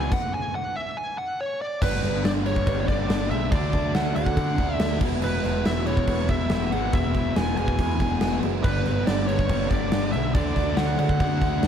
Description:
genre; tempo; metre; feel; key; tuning
classic rock; 141 BPM; 4/4; straight; unclear; A4 = 441 Hz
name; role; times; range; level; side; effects
bluesy overdriven lead guitar; melody; 0.0-11.7 s; B4 to G#5; -29 LUFS; equal; distortion
bright baby grand piano; accompaniment; 0.0-11.7 s; D4 to D5; -39 LUFS; right 11 dB; none
picked steel-string acoustic guitar; accompaniment; 0.0-11.7 s; E2 to G4; -38 LUFS; equal; none
cranked stack guitar; riff; 0.0-11.7 s; E2 to E4; -31 LUFS; left 12 dB; overdrive
overdriven electric guitar; riff; 0.0-11.7 s; G2 to E4; -31 LUFS; right 11 dB; phaser
growling picked electric bass; bass; 0.0-11.7 s; E1 to D3; -28 LUFS; equal; overdrive
huge arena drum kit; drums; 0.1-11.7 s; crash cymbal, kick drum, snare drum; -26 LUFS; equal; none
thick fuzz guitar; riff; 8.6-11.7 s; G2 to D4; -31 LUFS; right 1 dB; none
room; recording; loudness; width
light reverb; none; -21 LUFS; side -8 dB against mid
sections
0.0-1.8 A section; 1.8-11.7 B section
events
lead electric guitar solo 0.0-1.8; stop 0.1-1.8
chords
0.1 N.C.; 1.8 G; 3.5 D; 5.0 Eadd9; 8.6 G; 10.4 D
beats
| 0.12 0.54 0.97 1.39 | 1.82 2.25 2.67 3.10 | 3.52 3.95 4.38 4.80 | 5.23 5.66 6.08 6.51 | 6.93 7.36 7.79 8.22 | 8.64 9.07 9.50 9.93 | 10.35 10.78 11.21 11.64

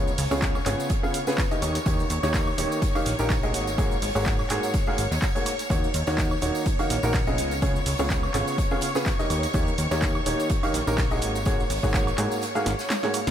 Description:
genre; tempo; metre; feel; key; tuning
piano house; 125 BPM; 4/4; swing 55% on 16ths; Eb minor; A4 = 440 Hz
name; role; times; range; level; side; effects
string machine, violins; sustained chords; 0.0-13.3 s; Db5 to Db6; -32 LUFS; equal; ensemble chorus, sidechain pumping
clear upright piano; riff; 0.0-13.2 s; Ab2 to F5; -27 LUFS; equal; sidechain pumping, ping-pong delay
plucky analog bass; bass; 0.0-13.3 s; Eb1 to Ab2; -28 LUFS; equal; sidechain pumping
punchy analog drum machine; drums; 0.1-13.3 s; cabasa, handclaps, hi-hat, snare drum, woodblock; -32 LUFS; right 1 dB; none
tambourine; percussion; 0.1-13.3 s; none; -43 LUFS; left 3 dB; none
loose indie drum kit; drums; 0.2-13.3 s; hi-hat, snare drum; -39 LUFS; right 3 dB; high-pass filter on hats, high-pass filter on snare, high-pass filter on room
electronic kick drum; drums; 0.4-12.0 s; none; -26 LUFS; equal; none
room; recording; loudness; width
light reverb; none; -22 LUFS; side -10 dB against mid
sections
0.0-13.3 A section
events
kick drops out 12.4-13.3; drum fill 12.7-13.3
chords
0.0 Db7; 1.6 Eb7; 3.5 Ab9sus4; 5.7 Ebm7; 7.4 Db7; 9.3 Eb7; 11.2 Ab9sus4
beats
0.42 0.90 1.38 | 1.86 2.34 2.82 3.30 | 3.78 4.26 4.74 5.22 | 5.70 6.18 6.66 7.14 | 7.62 8.10 8.58 9.06 | 9.54 10.02 10.50 10.98 | 11.46 11.94 12.42 12.90

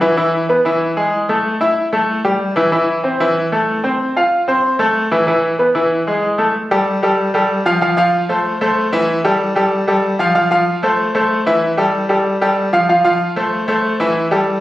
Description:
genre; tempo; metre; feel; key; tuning
latin; 189 BPM; 4/4; straight; unclear; A4 = 440 Hz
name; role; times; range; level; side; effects
bright grand piano; solo; 0.0-14.6 s; E3 to F5; -13 LUFS; equal; none
room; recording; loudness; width
moderate large studio reverb, RT60 1.3 s; recorded on a phone in the room, studio reverb, compression, nothing above 10.8 kHz; -13 LUFS; side -15 dB against mid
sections
0.0-6.5 A section; 6.5-14.6 B section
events
none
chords
0.2 E; 1.4 A5; 2.7 Am/E; 4.0 Fmaj7; 5.3 E; 6.5 Fadd9; 7.8 Fmaj7; 9.1 A5; 10.4 Fmaj7; 11.6 A5; 12.9 Fmaj7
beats
| 0.17 0.49 0.81 1.13 | 1.45 1.76 2.08 2.40 | 2.72 3.04 3.36 3.68 | 4.00 4.31 4.63 4.95 | 5.27 5.59 5.91 6.22 | 6.54 6.86 7.18 7.50 | 7.81 8.13 8.45 8.77 | 9.08 9.40 9.72 10.03 | 10.35 10.67 10.98 11.30 | 11.62 11.94 12.25 12.57 | 12.89 13.20 13.52 13.84 | 14.15 14.47

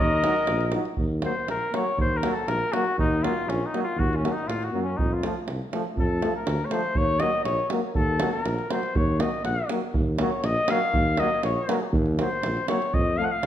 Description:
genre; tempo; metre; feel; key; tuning
balkan folk, Balkan brass band; 121 BPM; 2/4; straight; Eb dorian sharp4; A4 = 440 Hz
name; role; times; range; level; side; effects
clear flugelhorn; melody; 0.0-13.5 s; Db4 to Gb5; -27 LUFS; left 2 dB; none
mellow trumpet; second line; 0.0-0.7 s; Bb4; -30 LUFS; right 1 dB; none
mellow tuba; bass; 0.0-13.5 s; Bb1 to A2; -27 LUFS; equal; none
brilliant trombone; accompaniment; 0.2-13.3 s; F3 to Gb3; -34 LUFS; right 6 dB; none
davul; percussion; 0.2-13.5 s; none; -29 LUFS; right 2 dB; none
clear euphonium; accompaniment; 0.3-13.3 s; A3 to Eb4; -33 LUFS; left 6 dB; none
room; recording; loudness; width
moderate recital hall reverb, RT60 1.4 s; none; -22 LUFS; side -11 dB against mid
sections
1.0-13.5 A section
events
flugelhorn solo 1.0-13.5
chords
0.0 Ebm; 5.0 F; 7.0 Ebm; 12.9 F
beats
0.49 | 0.99 1.49 | 1.98 2.48 | 2.98 3.48 | 3.98 4.48 | 4.98 5.47 | 5.97 6.47 | 6.97 7.46 | 7.96 8.46 | 8.96 9.45 | 9.95 10.45 | 10.94 11.44 | 11.94 12.43 | 12.93 13.42

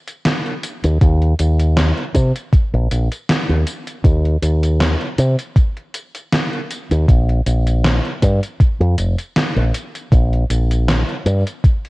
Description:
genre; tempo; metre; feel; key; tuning
vaporwave; 79 BPM; 4/4; swing 54% on 16ths; unclear; A4 = 440 Hz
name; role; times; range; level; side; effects
gated 80s digital drum machine; drums; 0.1-11.9 s; hi-hat, snare drum, tambourine; -20 LUFS; equal; gated reverb, gated reverb snare, overdrive
fingered electric bass with an envelope filter; bass; 0.8-11.4 s; F1 to C3; -15 LUFS; equal; none
electronic kick drum; drums; 1.0-11.8 s; none; -13 LUFS; equal; overdrive
room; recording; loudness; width
little or no reverb; worn, warbling old tape, cassette tape, warbly pitch drift; -14 LUFS; side -22 dB against mid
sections
0.0-11.9 A section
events
none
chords
none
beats
0.25 | 1.01 1.77 2.53 3.29 | 4.05 4.80 5.57 6.32 | 7.08 7.84 8.60 9.36 | 10.12 10.88 11.64

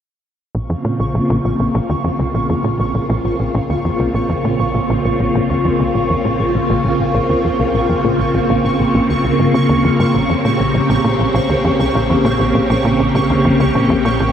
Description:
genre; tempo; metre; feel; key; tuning
ambient, sequencer-driven space music; 100 BPM; 4/4; straight; Bb dorian; A4 = 440 Hz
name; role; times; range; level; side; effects
phased string machine; sustained chords; 0.5-14.3 s; Db3 to G4; -16 LUFS; equal; ensemble chorus, phaser
tight sequencer bass; riff; 0.5-14.3 s; Bb1 to Db3; -18 LUFS; equal; tape echo
warm sub bass; bass; 0.5-14.3 s; Bb1; -32 LUFS; equal; none
pulsing gated texture; texture; 0.9-14.3 s; Db6; -23 LUFS; right 2 dB; chorus, built-in reverb
room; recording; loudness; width
wet huge ambient reverb, RT60 7.8 s; dreamy mix soaked in reverb; -13 LUFS; side -9 dB against mid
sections
0.5-14.3 A section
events
filter sweep on analog synth bass 0.5-14.3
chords
0.5 Bbmadd9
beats
| 0.55 1.15 1.75 2.35 | 2.95 3.55 4.15 4.75 | 5.35 5.95 6.55 7.15 | 7.75 8.35 8.95 9.55 | 10.15 10.75 11.35 11.95 | 12.55 13.15 13.75

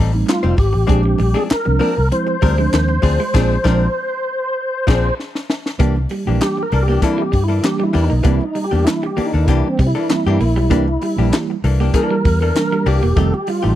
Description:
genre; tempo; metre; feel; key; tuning
funk; 98 BPM; 4/4; straight; C mixolydian; A4 = 439 Hz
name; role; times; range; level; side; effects
hollow-body jazz guitar; accompaniment; 0.0-13.8 s; E3 to C5; -24 LUFS; left 8 dB; none
vintage muted fingered electric bass; bass; 0.0-13.8 s; E1 to C3; -16 LUFS; equal; none
mellow tine electric piano; stabs; 0.1-13.8 s; Eb3 to E4; -22 LUFS; right 5 dB; medium stereo tremolo
tonewheel organ; melody; 0.3-13.8 s; C4 to C5; -20 LUFS; equal; overdrive, chorus vibrato, slow rotary speaker
compact cocktail drum kit; drums; 0.3-13.6 s; crash cymbal, handclaps, hi-hat, kick drum, snare drum; -18 LUFS; left 1 dB; none
semi-hollow electric guitar; riff; 1.1-13.7 s; G3 to Bb3; -26 LUFS; right 5 dB; none
room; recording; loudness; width
small room reverb; dry, close 1970s-style studio recording; -14 LUFS; side -12 dB against mid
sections
0.0-5.8 A section; 5.8-13.8 B section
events
band accent 3.3-5.8; tine electric piano fill 4.6-5.8; drum fill 5.2-5.8; tonewheel organ solo 5.8-13.8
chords
0.0 F9; 0.9 Bb9; 5.8 C9; 13.2 F9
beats
0.28 | 0.89 1.51 2.12 2.73 | 3.35 3.96 4.57 5.19 | 5.80 6.41 7.03 7.64 | 8.25 8.87 9.48 10.10 | 10.71 11.33 11.94 12.56 | 13.17

